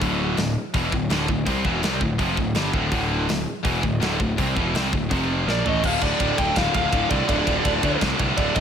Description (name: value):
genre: heavy metal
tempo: 165 BPM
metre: 4/4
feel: straight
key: D minor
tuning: A4 = 441 Hz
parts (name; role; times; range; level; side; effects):
- heavy high-gain guitar; riff; 0.0-8.6 s; D2 to C4; -26 LUFS; left 10 dB; distortion
- high-gain distorted guitar; riff; 0.0-8.6 s; D2 to C4; -26 LUFS; right 12 dB; distortion
- fuzz picked electric bass; bass; 0.0-8.6 s; D1 to D2; -26 LUFS; equal; overdrive
- tight metal drum kit; drums; 0.0-8.6 s; crash cymbal, hi-hat, kick drum, ride cymbal, snare drum, toms; -26 LUFS; equal; none
- smooth overdriven lead guitar; melody; 5.5-8.6 s; D5 to G5; -25 LUFS; right 1 dB; none
- warm studio string section; sustained chords; 5.8-8.6 s; D3 to F4; -35 LUFS; right 2 dB; none
room: little or no reverb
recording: none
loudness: -20 LUFS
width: side -8 dB against mid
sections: 0.0-5.8 A section; 5.8-8.6 B section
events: drum fill 5.5-5.8; half time 5.8-8.6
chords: 0.0 Dm; 5.1 F5; 5.5 Dm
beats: | 0.02 0.38 0.74 1.11 | 1.47 1.83 2.19 2.56 | 2.92 3.28 3.65 4.01 | 4.38 4.74 5.10 5.47 | 5.83 6.20 6.56 6.92 | 7.29 7.65 8.01 8.38